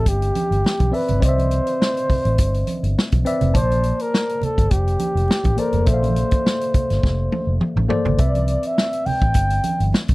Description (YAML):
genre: lush 1970s-style soul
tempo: 103 BPM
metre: 4/4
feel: swing 54% on 16ths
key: C major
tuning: A4 = 440 Hz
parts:
  - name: breathy flugelhorn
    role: melody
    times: 0.0-9.9 s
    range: G4 to G5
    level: -23 LUFS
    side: equal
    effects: none
  - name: tine electric piano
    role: accompaniment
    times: 0.0-10.1 s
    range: Bb3 to A5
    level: -26 LUFS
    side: left 3 dB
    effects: none
  - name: vintage muted fingered electric bass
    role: bass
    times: 0.0-10.1 s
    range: F1 to C2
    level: -20 LUFS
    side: equal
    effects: none
  - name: vintage drum kit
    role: drums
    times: 0.1-10.1 s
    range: hi-hat, kick drum, snare drum, toms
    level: -20 LUFS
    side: equal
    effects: none
  - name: congas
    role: percussion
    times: 0.1-10.1 s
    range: none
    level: -28 LUFS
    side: right 4 dB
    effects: none
room: little or no reverb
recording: dry, close 1970s-style studio recording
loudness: -17 LUFS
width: side -20 dB against mid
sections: 0.0-10.1 A section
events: drum fill 7.0-8.2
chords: 0.0 Cmaj9; 3.5 Bbmaj9; 8.2 Cmaj9